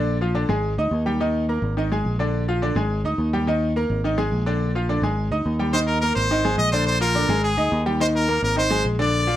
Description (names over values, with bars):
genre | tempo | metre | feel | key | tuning
latin, salsa | 212 BPM | 4/4 | straight | unclear | A4 = 442 Hz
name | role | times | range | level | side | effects
bright grand piano | accompaniment | 0.0-9.4 s | D3 to Eb6 | -23 LUFS | equal | none
fingered electric bass | bass | 0.0-9.4 s | Ab1 to Eb2 | -23 LUFS | equal | none
brilliant trumpet | melody | 5.7-9.4 s | Ab4 to Eb5 | -22 LUFS | equal | none
room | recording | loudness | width
moderate studio ambience, RT60 0.5 s | none | -19 LUFS | side -12 dB against mid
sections
0.0-5.7 A section; 5.7-9.4 A section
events
none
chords
0.1 Bb7; 0.6 Ab5; 1.2 Eb5; 1.8 Ab5; 2.3 Bb7; 2.9 Ab5; 3.5 Eb5; 4.0 Ab5; 4.6 Bb7; 5.2 Ab5; 5.7 Eb5; 6.3 Ab; 6.9 Bb7; 7.4 Ab5; 8.0 Eb5; 8.6 Ab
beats
| 0.07 0.35 0.64 0.92 | 1.21 1.49 1.77 2.06 | 2.34 2.62 2.91 3.19 | 3.47 3.76 4.04 4.32 | 4.61 4.89 5.17 5.46 | 5.74 6.02 6.31 6.59 | 6.87 7.16 7.44 7.72 | 8.01 8.29 8.57 8.85 | 9.14